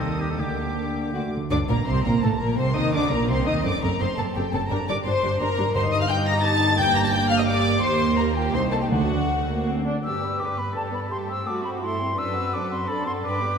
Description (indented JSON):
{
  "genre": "quick classical-period movement for symphony orchestra",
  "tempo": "169 BPM",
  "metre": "3/4",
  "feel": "rubato",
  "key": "G minor, G major from 10.0 s",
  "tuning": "A4 = 441 Hz",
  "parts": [
    { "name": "dark studio violin section", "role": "melody", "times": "0.0-13.6 s", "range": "B4 to Bb6", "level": "-29 LUFS", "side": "left 1 dB", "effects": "none" },
    { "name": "clear oboe", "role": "second line", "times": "0.0-1.1 s", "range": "G4 to A4", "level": "-33 LUFS", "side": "equal", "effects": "none" },
    { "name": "warm studio violin section", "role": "second line", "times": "0.0-13.6 s", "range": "F#4 to Bb5", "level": "-28 LUFS", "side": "left 3 dB", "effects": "none" },
    { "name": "warm studio viola section", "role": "accompaniment", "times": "0.0-13.6 s", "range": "A3 to A4", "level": "-28 LUFS", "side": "right 1 dB", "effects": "none" },
    { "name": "mellow French horn section", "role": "sustained chords", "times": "0.0-1.3 s", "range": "G3 to F#4", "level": "-33 LUFS", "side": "left 3 dB", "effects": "none" },
    { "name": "warm studio cello section", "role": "bass", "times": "0.0-13.6 s", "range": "C2 to B4", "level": "-29 LUFS", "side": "right 2 dB", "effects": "none" },
    { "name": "warm studio double bass section", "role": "bass", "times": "0.0-13.5 s", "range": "F#1 to G2", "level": "-28 LUFS", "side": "right 1 dB", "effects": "none" },
    { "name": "timpani", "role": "percussion", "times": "0.4-2.0, 5.8-9.4 s", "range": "G2 to D3", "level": "-31 LUFS", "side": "equal", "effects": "none" },
    { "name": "silver concert flute", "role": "second line", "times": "10.0-13.6 s", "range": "A5 to E6", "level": "-28 LUFS", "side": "left 1 dB", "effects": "none" }
  ],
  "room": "wet scoring stage reverb, RT60 1.9 s",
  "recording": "minimal, uncompressed stereo recording",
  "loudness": "-21 LUFS",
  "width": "side -6 dB against mid",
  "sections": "0.0-1.5 A section; 1.5-10.0 A section; 10.0-13.6 A section",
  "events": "timpani fill 1.1-1.5",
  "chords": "0.4 Gm/D; 1.1 D; 1.5 Bbmaj7sus2; 2.6 Cm9; 3.7 D7b13/F#; 4.7 Gm; 5.7 F9/G (rootless); 6.8 Gm; 7.8 Eb; 8.5 Cm; 8.9 D; 10.0 G; 11.1 Am7/G; 12.2 D7/F#"
}